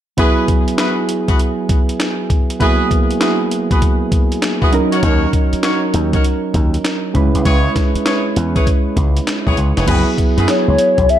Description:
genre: R&B, new jack swing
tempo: 99 BPM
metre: 4/4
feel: swing 64% on 16ths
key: unclear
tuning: A4 = 441 Hz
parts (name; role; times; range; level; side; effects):
- soft electric-piano-like synth keys; accompaniment; 0.2-11.2 s; F#3 to B4; -18 LUFS; right 3 dB; chorus
- warm horn section; stabs; 0.2-10.5 s; D#4 to C#5; -21 LUFS; left 1 dB; ping-pong delay
- breakbeat sampler-style drum kit; drums; 0.2-11.2 s; crash cymbal, handclaps, hi-hat, kick drum, snare drum; -16 LUFS; equal; none
- slap bass with an envelope filter; bass; 5.0-11.1 s; E#1 to F#2; -17 LUFS; equal; none
- hollow clarinet-like synth lead; melody; 10.5-11.2 s; C#5 to E5; -13 LUFS; left 3 dB; chorus
room: light reverb, digital ambience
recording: dark, warm production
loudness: -13 LUFS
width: side -11 dB against mid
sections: 0.2-9.9 A section; 9.9-11.2 B section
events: none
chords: 0.2 F#9sus4; 4.7 D#m7; 7.1 C#m7; 9.9 F#9sus4

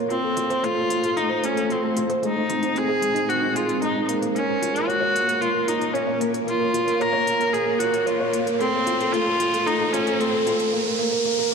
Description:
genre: piano and strings electronica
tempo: 113 BPM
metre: 4/4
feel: straight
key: unclear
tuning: A4 = 440 Hz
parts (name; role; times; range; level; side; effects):
- granular cloud pad; sustained chords; 0.0-10.7 s; Ab3 to F5; -28 LUFS; left 1 dB; built-in reverb
- felt-muted upright piano; riff; 0.0-11.5 s; Ab3 to Db5; -24 LUFS; right 1 dB; ping-pong delay
- warm sub bass; bass; 0.0-10.7 s; none; barely audible; none; none
- clear viola; melody; 0.1-10.5 s; C4 to Bb4; -24 LUFS; equal; ping-pong delay
- deep house drum kit; drums; 0.1-10.7 s; hi-hat, toms; -36 LUFS; left 1 dB; high-pass filter on hats, high-pass filter on toms
- riser; sound effects; 6.1-11.5 s; none; -30 LUFS; equal; none
room: moderate concert hall reverb, RT60 2.2 s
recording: none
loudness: -20 LUFS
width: side -5 dB against mid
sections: 0.0-11.5 A section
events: build-up 0.0-11.5; riser 6.1-11.5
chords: 0.1 F/A; 2.2 Abadd9; 4.4 Bbm; 8.6 F/A; 10.7 N.C.

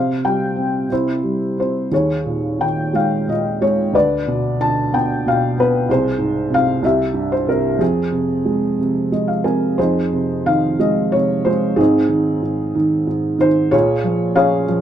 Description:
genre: classical, lyrical solo piano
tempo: 59-64 BPM (dotted quarters)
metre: 6/8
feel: rubato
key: F minor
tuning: A4 = 440 Hz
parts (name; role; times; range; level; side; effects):
- felt-muted upright piano; solo; 0.0-14.8 s; C2 to A5; -15 LUFS; equal; none
room: moderate small room reverb, RT60 0.5 s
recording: dark, warm production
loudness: -15 LUFS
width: side -10 dB against mid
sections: 0.0-9.8 A section; 9.8-14.8 A section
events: felt piano fill 8.8-9.8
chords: 0.0 C5; 0.9 C; 1.9 Eb7sus4; 3.9 Dm6; 5.9 Fm/C; 6.8 C; 7.8 Fm; 9.8 Fm7; 11.8 Ab; 13.7 Bbm7

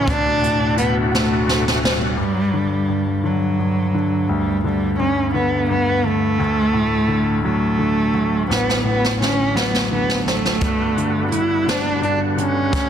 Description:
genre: six-eight pop ballad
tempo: 57 BPM (dotted quarters)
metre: 6/8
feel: straight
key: unclear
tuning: A4 = 441 Hz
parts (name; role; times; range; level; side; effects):
- dark cello; melody; 0.0-12.9 s; F#3 to E4; -20 LUFS; right 2 dB; none
- mellow French horn section; second line; 0.0-1.8 s; D4 to F#4; -29 LUFS; left 4 dB; tape echo
- clear concert grand piano; accompaniment; 0.0-12.9 s; D1 to F#4; -21 LUFS; left 1 dB; none
- bright tonewheel organ; sustained chords; 0.0-2.2, 10.6-12.9 s; B2 to F#4; -26 LUFS; left 1 dB; chorus vibrato, fast rotary speaker
- jazz brush drum kit; drums; 0.1-2.0, 8.5-12.9 s; hi-hat, kick drum, snare drum; -22 LUFS; equal; soft clipping on snare
room: moderate echo chamber reverb, RT60 2.2 s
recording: dense, heavily limited modern master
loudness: -16 LUFS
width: side -9 dB against mid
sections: 0.0-2.2 A section; 2.2-12.9 B section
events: drum fill 1.1-2.2, 8.5-10.6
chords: 0.1 D6; 2.2 G5; 6.4 D; 10.6 Gmaj7

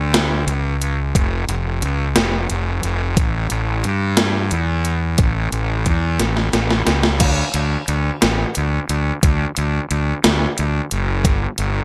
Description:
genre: indie rock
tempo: 60 BPM (dotted quarters)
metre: 6/8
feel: straight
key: D harmonic minor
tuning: A4 = 440 Hz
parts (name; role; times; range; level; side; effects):
- fuzz fingered electric bass; bass; 0.0-11.8 s; F1 to G2; -21 LUFS; equal; overdrive
- gated 80s digital drum machine; drums; 0.1-11.7 s; crash cymbal, hi-hat, kick drum, snare drum; -20 LUFS; equal; gated reverb, gated reverb snare, overdrive
room: little or no reverb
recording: none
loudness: -19 LUFS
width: mono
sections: 0.0-7.2 A section; 7.2-11.8 B section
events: drum fill 6.2-7.2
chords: none

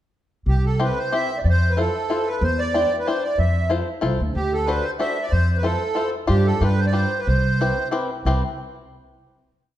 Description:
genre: musette waltz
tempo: 185 BPM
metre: 3/4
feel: straight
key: C major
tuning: A4 = 438 Hz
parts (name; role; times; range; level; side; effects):
- accordion; melody; 0.5-7.9 s; G4 to E5; -23 LUFS; right 2 dB; light tremolo tuning
- upright bass; bass; 0.5-8.4 s; C2 to G2; -20 LUFS; equal; none
- bluegrass banjo; accompaniment; 0.8-8.4 s; C4 to C5; -26 LUFS; left 3 dB; none
room: moderate recital hall reverb, RT60 1.5 s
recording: dark, warm production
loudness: -19 LUFS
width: side -12 dB against mid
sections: 0.5-8.3 A section; 8.3-9.2 final chord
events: none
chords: 0.5 C; 1.5 Fmaj7; 2.4 Cadd9/E; 3.4 Fmaj7; 4.4 D7; 5.3 Fmaj7; 6.3 G7sus4; 6.6 G7; 7.3 Cmaj7

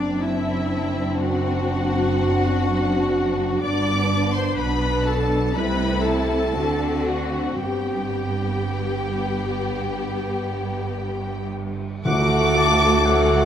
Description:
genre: classical, slow romantic movement for symphony orchestra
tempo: 53-64 BPM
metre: 4/4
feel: rubato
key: G major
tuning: A4 = 438 Hz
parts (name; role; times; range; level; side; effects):
- warm symphonic violin section; melody; 0.0-13.4 s; D5 to D6; -28 LUFS; left 4 dB; none
- warm symphonic violin section; second line; 0.0-13.4 s; B3 to F#5; -29 LUFS; left 2 dB; none
- rich studio viola section; accompaniment; 0.0-13.4 s; F#3 to D5; -26 LUFS; equal; none
- mellow French horn section; sustained chords; 0.0-13.4 s; A3 to G4; -28 LUFS; left 2 dB; none
- rich symphonic cello section; bass; 0.0-13.4 s; D2 to D3; -28 LUFS; right 2 dB; none
- rich symphonic double bass section; bass; 0.0-13.4 s; F#1 to D2; -27 LUFS; right 3 dB; none
- cymbal swell and tam-tam; percussion; 7.6-13.4 s; none; -34 LUFS; left 1 dB; none
- mellow bassoon; accompaniment; 12.0-13.4 s; A3; -26 LUFS; right 1 dB; none
- clear clarinet; second line; 12.1-13.4 s; F#4; -28 LUFS; equal; none
- clear oboe; second line; 12.1-13.4 s; F#5 to A5; -28 LUFS; equal; none
- silver concert flute; second line; 12.1-13.4 s; D6; -26 LUFS; equal; none
- mellow tuba; bass; 12.1-13.4 s; D2; -26 LUFS; right 4 dB; none
- timpani; percussion; 12.1-13.4 s; D3; -28 LUFS; equal; none
room: moderate scoring stage reverb, RT60 2.0 s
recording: none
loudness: -20 LUFS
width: side -9 dB against mid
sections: 0.0-12.1 A section; 12.1-13.4 B section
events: band accent 12.1-13.0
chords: 0.0 D7/F#; 3.6 G; 5.5 Am/C; 6.5 D7; 7.6 G; 12.1 D

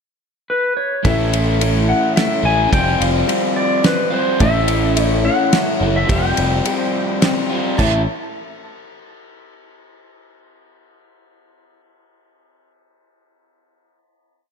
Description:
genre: folk rock and heartland rock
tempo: 107 BPM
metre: 3/4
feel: straight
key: unclear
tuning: A4 = 441 Hz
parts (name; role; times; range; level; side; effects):
- clean lap steel guitar; melody; 0.5-8.0 s; B4 to A5; -21 LUFS; left 1 dB; tape echo
- picked old ladder-braced acoustic guitar; accompaniment; 1.0-8.0 s; A2 to C#5; -22 LUFS; left 3 dB; none
- crunchy overdriven guitar; riff; 1.0-8.0 s; A2 to F4; -21 LUFS; equal; none
- picked electric bass; bass; 1.0-8.1 s; F1 to A1; -19 LUFS; right 1 dB; none
- damped 70s drum kit; drums; 1.0-7.9 s; crash cymbal, kick drum, ride cymbal, snare drum; -21 LUFS; equal; none
room: moderate scoring stage reverb, RT60 1.5 s, studio ambience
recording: big arena sound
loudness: -14 LUFS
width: side -6 dB against mid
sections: 0.0-1.0 pickup bar; 1.0-7.8 verse; 7.8-9.5 final chord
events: none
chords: 0.0 N.C.; 1.0 A; 2.7 Fsus2; 4.4 A; 6.1 Fsus2; 7.8 A

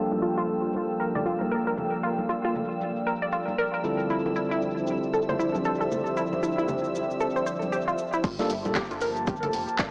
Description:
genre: deep house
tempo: 116 BPM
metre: 4/4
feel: swing 60% on 16ths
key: G dorian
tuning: A4 = 440 Hz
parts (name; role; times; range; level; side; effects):
- warbly tape-like pad; sustained chords; 0.0-9.9 s; F3 to A5; -35 LUFS; equal; chorus, built-in reverb, phaser, sidechain pumping
- analog pluck; arpeggios; 0.0-9.8 s; E4 to D5; -32 LUFS; equal; chorus, sidechain pumping, analog delay
- tine electric piano; stabs; 0.0-8.8 s; D3 to A4; -33 LUFS; equal; sidechain pumping, analog delay
- airy breathy pad; texture; 0.0-9.9 s; F3 to E6; -36 LUFS; equal; chorus, sidechain pumping
- clear studio violin section; texture; 0.0-8.3 s; E6; -47 LUFS; equal; sidechain pumping
- cabasa; percussion; 0.1-9.9 s; none; -53 LUFS; equal; tape echo
- congas; percussion; 0.1-9.5 s; none; -40 LUFS; equal; tape echo
- round analog bass; bass; 8.2-9.7 s; F1 to Bb1; -44 LUFS; equal; sidechain pumping
- electronic kick drum; drums; 8.2-9.9 s; none; -33 LUFS; equal; none
- house drum kit; drums; 8.2-9.9 s; crash cymbal, handclaps, hi-hat; -36 LUFS; equal; low-pass filter on hats, low-pass filter on cymbals, low-pass filter on snare
- tight metal drum kit; drums; 8.2-9.9 s; hi-hat, snare drum; -42 LUFS; equal; none
room: wet spring reverb, RT60 2.3 s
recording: echo-heavy mix, low-pass filter, small speaker sound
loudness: -27 LUFS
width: mono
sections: 0.0-8.2 A section; 8.2-9.9 B section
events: filter sweep 0.0-8.2; drop 8.2-9.9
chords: 0.0 Gm9; 3.8 Dm11; 8.2 Gm9

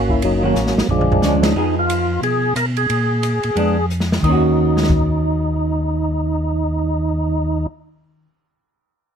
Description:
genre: soul jazz organ trio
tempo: 180 BPM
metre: 4/4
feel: swing 62% on 8ths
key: Eb minor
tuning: A4 = 441 Hz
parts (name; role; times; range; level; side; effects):
- percussive tonewheel organ; melody; 0.0-7.7 s; F3 to Bb4; -20 LUFS; right 1 dB; slow rotary speaker, overdrive, chorus vibrato
- mellow tonewheel organ; bass; 0.0-7.7 s; Gb1 to Cb3; -20 LUFS; left 1 dB; chorus vibrato, slow rotary speaker
- open jazz drum kit; drums; 0.1-5.0 s; crash cymbal, hi-hat, kick drum, ride cymbal, rim click, snare drum, toms; -22 LUFS; equal; none
- vintage hollow-body jazz guitar; accompaniment; 0.4-8.4 s; Eb3 to Ab4; -20 LUFS; right 1 dB; none
room: little or no reverb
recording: dark, warm production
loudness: -16 LUFS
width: side -7 dB against mid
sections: 0.0-1.6 A section; 1.6-4.2 B section; 4.2-6.9 C section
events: drum fill 0.6-1.2, 3.9-4.2; band accent 1.4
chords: 0.0 Ebm7; 0.9 Bb7#9; 1.6 Fm7b5; 2.9 Bb7b9; 4.2 Ebm7

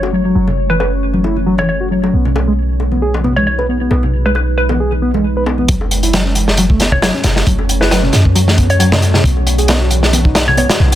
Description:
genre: breakbeat, breaks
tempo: 135 BPM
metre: 4/4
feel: swing 54% on 16ths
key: F# dorian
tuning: A4 = 440 Hz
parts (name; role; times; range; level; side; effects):
- deep dark ambient pad; sustained chords; 0.0-11.0 s; G#3 to C#5; -22 LUFS; equal; chorus, built-in reverb, sidechain pumping
- reed electric piano; riff; 0.0-10.8 s; E3 to B4; -18 LUFS; equal; fast tremolo, vintage 12-bit sampler grit, low-pass filter, digital delay
- warm 808-style bass; bass; 0.0-11.0 s; F#1 to F#2; -15 LUFS; equal; none
- bongos and congas; percussion; 0.0-10.9 s; none; -23 LUFS; left 3 dB; none
- hollow square pluck; melody; 0.7-10.7 s; B4 to C#5; -20 LUFS; right 1 dB; chorus, telephone sound, cassette tape, digital delay
- crunchy breakbeat drum kit; drums; 5.7-11.0 s; hi-hat, kick drum, snare drum; -14 LUFS; equal; none
room: light reverb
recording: dense, heavily limited modern master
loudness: -11 LUFS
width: side -12 dB against mid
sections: 0.0-5.7 A section; 5.7-11.0 B section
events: drop 5.7-11.0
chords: 0.0 F#m; 2.1 B6; 5.7 F#m; 9.2 B6

